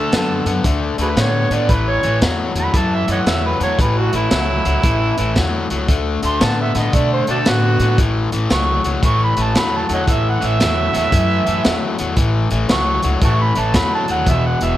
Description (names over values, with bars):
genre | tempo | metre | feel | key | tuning
electric blues shuffle | 114 BPM | 4/4 | swing 65% on 8ths | A major | A4 = 440 Hz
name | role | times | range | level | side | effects
overdriven harmonica | second line | 0.0-14.8 s | D4 to C#6 | -20 LUFS | right 4 dB | none
crunchy overdriven guitar | riff | 0.0-14.8 s | E2 to B3 | -20 LUFS | left 4 dB | none
upright bass | bass | 0.0-14.8 s | E1 to B2 | -20 LUFS | equal | none
crunchy breakbeat drum kit | drums | 0.1-14.7 s | hi-hat, kick drum, snare drum | -20 LUFS | equal | none
room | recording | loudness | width
light reverb | none | -14 LUFS | side -13 dB against mid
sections
0.0-14.8 A section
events
harmonica solo 0.0-14.8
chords
0.0 D; 1.7 A; 5.9 D; 8.0 A; 14.3 E5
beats
0.12 0.65 1.17 | 1.69 2.22 2.74 3.27 | 3.79 4.31 4.84 5.36 | 5.88 6.41 6.93 7.46 | 7.98 8.51 9.03 9.55 | 10.08 10.60 11.12 11.65 | 12.17 12.70 13.22 13.74 | 14.27